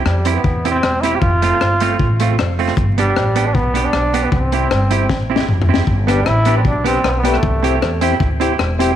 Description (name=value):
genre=ska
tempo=155 BPM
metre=4/4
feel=swing 54% on 8ths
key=C major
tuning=A4 = 438 Hz
part: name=bright trombone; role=melody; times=0.0-8.0 s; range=G3 to G4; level=-20 LUFS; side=equal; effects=none
part: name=semi-hollow electric guitar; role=accompaniment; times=0.0-8.9 s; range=A3 to G4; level=-20 LUFS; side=right 8 dB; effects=slapback echo
part: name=upright bass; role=bass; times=0.1-8.9 s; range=E1 to F2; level=-18 LUFS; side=equal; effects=none
part: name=crunchy breakbeat drum kit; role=drums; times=0.1-8.9 s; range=hi-hat, kick drum, rim click, snare drum, toms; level=-20 LUFS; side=left 3 dB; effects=none
part: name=mellow tonewheel organ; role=stabs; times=6.1-8.9 s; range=B3 to C5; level=-21 LUFS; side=left 9 dB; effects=slow rotary speaker
room=moderate echo chamber reverb, RT60 2.0 s, studio reverb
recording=1960s-style stereo with parts hard left and right, vinyl crackle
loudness=-13 LUFS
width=side -10 dB against mid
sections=0.0-9.0 A section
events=drum fill 5.1-5.9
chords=0.0 C; 1.2 F; 2.8 G; 4.3 C; 5.9 G; 7.4 C